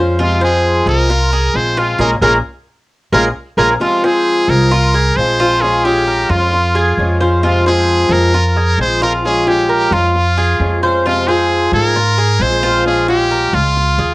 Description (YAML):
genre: latin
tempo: 133 BPM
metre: 4/4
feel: straight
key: F minor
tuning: A4 = 440 Hz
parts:
  - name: picked swing-style acoustic guitar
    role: accompaniment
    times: 0.0-13.8 s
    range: C3 to F4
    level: -16 LUFS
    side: left 1 dB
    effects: none
  - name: Cuban tres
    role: arpeggios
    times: 0.0-14.1 s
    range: F4 to C5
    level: -18 LUFS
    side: right 1 dB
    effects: none
  - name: upright bass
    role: bass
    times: 0.0-14.1 s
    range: Bb1 to Ab2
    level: -17 LUFS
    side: equal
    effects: none
  - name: brilliant trumpet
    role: melody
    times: 0.2-14.1 s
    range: F4 to C5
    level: -16 LUFS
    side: equal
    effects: cassette tape
room: light reverb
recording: home recording on cassette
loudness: -11 LUFS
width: side -20 dB against mid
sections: 0.0-3.8 A section; 3.8-14.1 A section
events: band accent 2.0-3.8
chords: 0.2 Fm; 2.0 Bbm7; 3.8 Fm; 5.6 Bbm7; 7.4 Fm; 9.2 Bbm7; 11.0 Fm; 12.9 Bbm7